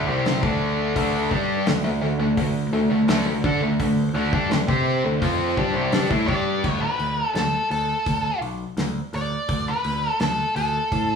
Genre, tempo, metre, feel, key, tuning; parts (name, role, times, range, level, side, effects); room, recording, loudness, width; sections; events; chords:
classic rock; 84 BPM; 4/4; straight; A4 = 437 Hz
tight distorted guitar; riff; 0.0-6.6 s; C3 to C5; -22 LUFS; equal; distortion
growling picked electric bass; bass; 0.0-11.1 s; B1 to D3; -26 LUFS; equal; overdrive
damped 70s drum kit; drums; 0.3-11.1 s; crash cymbal, hi-hat, kick drum, snare drum; -26 LUFS; left 1 dB
octave-fuzz lead guitar; melody; 6.3-11.2 s; A4 to D5; -24 LUFS; equal; distortion
wet large studio reverb, RT60 0.8 s; band playing live in one room, studio ambience; -20 LUFS; side -6 dB against mid
0.0-6.6 A section; 6.6-11.2 B section
0.0 D5